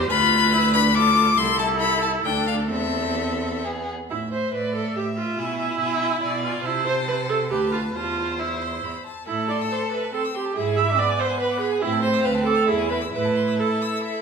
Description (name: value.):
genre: quick classical-period movement for string quartet.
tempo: 126-144 BPM.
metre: 3/4.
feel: rubato.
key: A minor.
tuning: A4 = 440 Hz.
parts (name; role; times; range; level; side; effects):
rich violin; second line; 0.0-14.2 s; B3 to E5; -30 LUFS; left 3 dB; none.
rich viola; accompaniment; 0.0-14.2 s; B3 to E5; -24 LUFS; right 4 dB; none.
clear cello; bass; 0.0-13.5 s; C2 to C3; -26 LUFS; right 2 dB; none.
rich violin; melody; 0.1-14.2 s; E5 to F6; -26 LUFS; left 8 dB; none.
room: wet recital hall reverb, RT60 1.4 s.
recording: minimal, uncompressed stereo recording.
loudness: -20 LUFS.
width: side -5 dB against mid.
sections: 0.0-4.1 A section; 4.1-14.2 B section.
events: none.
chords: 0.1 Bdim/D; 1.4 Am/C; 2.2 D5; 2.7 Am/E; 3.6 E; 4.1 A5; 5.4 E7/B; 6.7 Am/C; 7.5 Bm7b5/D; 7.9 Am/E; 8.8 E5; 9.3 Am; 10.6 E7/G#; 11.8 Am; 12.3 Dm; 12.7 E; 13.1 A5.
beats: | 0.10 0.53 0.95 | 1.37 1.81 2.25 | 2.71 3.18 3.65 | 4.11 4.54 4.97 | 5.38 5.80 6.23 | 6.65 7.08 7.51 | 7.95 8.39 8.83 | 9.28 9.71 10.14 | 10.57 10.99 11.41 | 11.83 12.26 12.69 | 13.14 13.60 14.04.